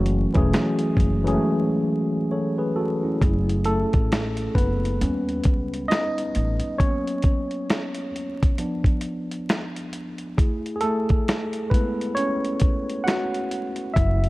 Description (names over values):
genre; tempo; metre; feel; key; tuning
lo-fi hip hop; 67 BPM; 4/4; swing 60% on 16ths; unclear; A4 = 441 Hz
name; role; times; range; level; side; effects
tine electric piano; accompaniment; 0.0-14.3 s; E3 to F#5; -24 LUFS; equal; medium stereo tremolo
upright bass; bass; 0.0-6.6, 14.0-14.3 s; E1 to D#2; -24 LUFS; equal; none
dusty soul sampler-style drum kit; drums; 0.1-14.3 s; hi-hat, kick drum, snare drum; -22 LUFS; equal; none
room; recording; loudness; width
little or no reverb; vinyl crackle; -21 LUFS; side -20 dB against mid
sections
0.0-3.2 A section; 3.2-14.3 B section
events
break 1.4-3.2, 6.8-14.0; tine electric piano solo 3.2-14.3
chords
0.0 F#m7; 5.0 D#aug7; 6.8 F#add11; 8.6 Bdim/F; 10.4 F#m7